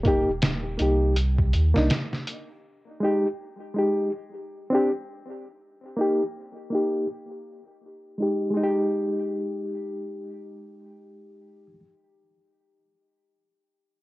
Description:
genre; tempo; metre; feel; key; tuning
trip hop; 81 BPM; 4/4; swing 59% on 16ths; unclear; A4 = 440 Hz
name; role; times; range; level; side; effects
reed electric piano; accompaniment; 0.0-11.8 s; Ab3 to G4; -25 LUFS; equal; overdrive, harmonic tremolo, vintage 12-bit sampler grit, low-pass filter, cassette tape, tape echo
warm sub bass; bass; 0.0-1.9 s; Eb1 to Eb2; -23 LUFS; equal; none
trip hop sampler-style drum kit; drums; 0.1-2.5 s; hi-hat, kick drum, snare drum; -25 LUFS; equal; small room reverb
room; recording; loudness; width
digital ambience; home recording on cassette; -23 LUFS; side -19 dB against mid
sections
0.0-8.6 A section; 8.6-11.5 B section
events
filter sweep on reed electric piano 0.0-8.6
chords
0.0 Eb; 1.2 Cm7; 2.6 Ebadd11/Ab; 4.1 Csus2; 5.6 Eb; 7.1 Ebadd11/Ab

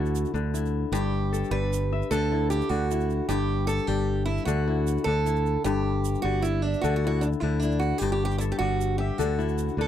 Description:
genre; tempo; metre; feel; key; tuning
west african traditional, West African string and xylophone music; 102 BPM (dotted quarters); 12/8; straight; unclear; A4 = 440 Hz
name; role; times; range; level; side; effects
picked acoustic archtop guitar; melody; 0.0-9.9 s; D4 to B4; -29 LUFS; right 5 dB; none
kora; arpeggios; 0.0-9.9 s; G2 to E5; -29 LUFS; left 11 dB; none
modern bright fingered electric bass; bass; 0.0-9.9 s; G1 to D2; -27 LUFS; right 1 dB; none
tube shaker; percussion; 0.1-9.7 s; none; -42 LUFS; right 18 dB; none
room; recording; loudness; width
little or no reverb; dry, close 1970s-style studio recording; -23 LUFS; side -10 dB against mid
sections
0.0-9.9 A section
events
none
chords
0.0 D; 0.9 G; 2.1 D; 3.3 Emadd11/G; 4.5 D; 5.7 Em/G; 6.8 D5; 8.0 Emadd11/G; 9.2 D

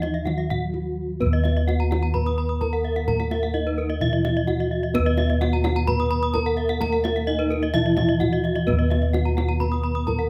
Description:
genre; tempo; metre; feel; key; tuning
Balinese gamelan; 129 BPM; 4/4; straight; Eb pelog; A4 = 439 Hz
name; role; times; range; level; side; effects
gamelan-type bronze metallophone; melody; 0.0-10.3 s; Cb4-20c to Cb5-20c; -29 LUFS; equal; none
gamelan-type bronze metallophone; accompaniment; 0.0-10.3 s; Fb3+20c to Cb4-20c; -32 LUFS; equal; none
gamelan-type bronze metallophone; arpeggios; 0.0-10.3 s; Cb5-20c to Eb6; -34 LUFS; equal; none
gamelan-type bossed gongs; bass; 0.0-10.3 s; Eb2 to Cb5-20c; -26 LUFS; equal; none
kendang; percussion; 0.0-10.2 s; none; -34 LUFS; equal; none
gamelan-type bronze metallophone; arpeggios; 0.3-10.2 s; Bb4-30c to Cb6-20c; -32 LUFS; equal; none
room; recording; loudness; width
moderate recital hall reverb, RT60 1.6 s; close, detailed microphones; -23 LUFS; mono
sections
0.0-1.2 A section; 1.2-10.3 B section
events
break 0.5-1.2; drum fill 0.7-1.2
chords
none

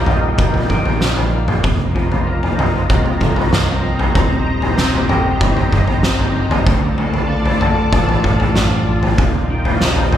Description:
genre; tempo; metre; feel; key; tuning
post-rock; 95 BPM; 4/4; straight; Eb lydian; A4 = 440 Hz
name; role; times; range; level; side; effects
analog string pad; sustained chords; 0.0-10.2 s; F4 to Bb5; -24 LUFS; equal; ensemble chorus
electric guitar through a small old amp; arpeggios; 0.0-10.2 s; Eb2 to A4; -22 LUFS; left 3 dB; none
fingered electric bass; bass; 0.0-10.2 s; Eb1 to D2; -21 LUFS; equal; none
oversized low-tuned drum kit; drums; 0.1-10.2 s; kick drum, snare drum, toms; -15 LUFS; equal; none
room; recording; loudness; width
moderate recital hall reverb, RT60 1.4 s; recorded in a church or concert hall; -13 LUFS; side -10 dB against mid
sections
0.0-10.2 A section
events
none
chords
0.0 Ebadd9; 1.6 F7sus4; 4.1 Cm7/Eb; 6.7 Dm; 9.2 Ebadd9

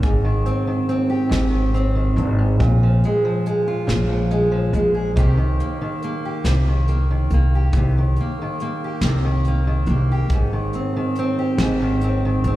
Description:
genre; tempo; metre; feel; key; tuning
acoustic folk duo or small band; 47 BPM (dotted quarters); 6/8; straight; Ab major; A4 = 439 Hz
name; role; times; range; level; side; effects
fingerpicked steel-string acoustic guitar; accompaniment; 0.0-12.6 s; G2 to Ab4; -20 LUFS; equal; none
upright bass; bass; 0.0-12.6 s; Ab1 to C2; -19 LUFS; equal; none
soft brush drum kit; drums; 0.0-12.6 s; hi-hat, kick drum, snare drum; -24 LUFS; equal; none
room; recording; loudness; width
light reverb, studio ambience; live gig heard through the venue's PA, club reverb, lossy compression artefacts; -17 LUFS; side -15 dB against mid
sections
0.0-12.6 A section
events
none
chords
0.0 Abmaj7; 2.6 Bb5; 5.2 Cm7; 10.3 Abmaj7

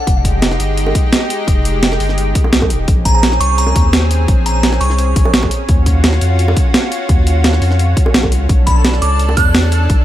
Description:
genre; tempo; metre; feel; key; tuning
liquid drum and bass; 171 BPM; 4/4; straight; Bb minor; A4 = 440 Hz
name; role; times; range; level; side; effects
glassy synth bell; melody; 0.0-0.1, 3.1-5.3, 8.7-9.6 s; F#5 to F#6; -20 LUFS; right 2 dB; chorus, phaser, dub echo
lush unison pad; sustained chords; 0.0-10.0 s; Ab3 to A4; -20 LUFS; equal; chorus, sidechain pumping
warm sub bass; bass; 0.1-10.0 s; Eb1 to F2; -14 LUFS; equal; none
breakbeat sampler-style drum kit; drums; 0.1-10.0 s; hi-hat, snare drum; -16 LUFS; right 1 dB; none
electronic kick drum; drums; 0.1-10.0 s; none; -14 LUFS; equal; none
bongos; percussion; 0.9-9.4 s; none; -24 LUFS; right 3 dB; none
room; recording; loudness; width
little or no reverb; none; -11 LUFS; side -13 dB against mid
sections
0.0-10.0 A section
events
none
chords
0.1 Fm9; 2.9 Bbm9; 5.7 Ebm9; 8.5 Bm9

